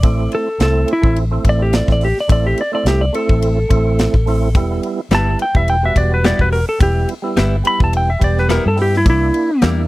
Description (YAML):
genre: straight-eighth soul blues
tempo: 106 BPM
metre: 4/4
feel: swing 54% on 16ths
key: E minor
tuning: A4 = 442 Hz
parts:
  - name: clean lap steel guitar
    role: melody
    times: 0.0-9.6 s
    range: E4 to B5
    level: -18 LUFS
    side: equal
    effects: none
  - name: percussive tonewheel organ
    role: accompaniment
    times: 0.0-9.9 s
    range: G3 to G4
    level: -22 LUFS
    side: right 4 dB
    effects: slow rotary speaker, overdrive, chorus vibrato
  - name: vintage muted fingered electric bass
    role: bass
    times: 0.0-9.9 s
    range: E1 to G2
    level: -16 LUFS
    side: equal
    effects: none
  - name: tight funk drum kit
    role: drums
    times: 0.0-9.8 s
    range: hi-hat, kick drum, ride cymbal, snare drum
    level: -15 LUFS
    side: equal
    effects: none
  - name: direct-recorded clean electric guitar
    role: stabs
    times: 5.1-9.8 s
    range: G3 to E4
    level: -20 LUFS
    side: left 4 dB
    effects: spring reverb
room: small room ambience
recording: dry, close 1970s-style studio recording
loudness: -13 LUFS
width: side -18 dB against mid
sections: 0.0-9.9 A section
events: electric slide guitar solo 0.0-9.9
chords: 0.0 Am; 4.5 Em; 9.1 C7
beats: | 0.03 0.59 1.16 1.72 | 2.29 2.85 3.42 3.98 | 4.55 5.11 5.67 6.24 | 6.80 7.37 7.93 8.50 | 9.06 9.62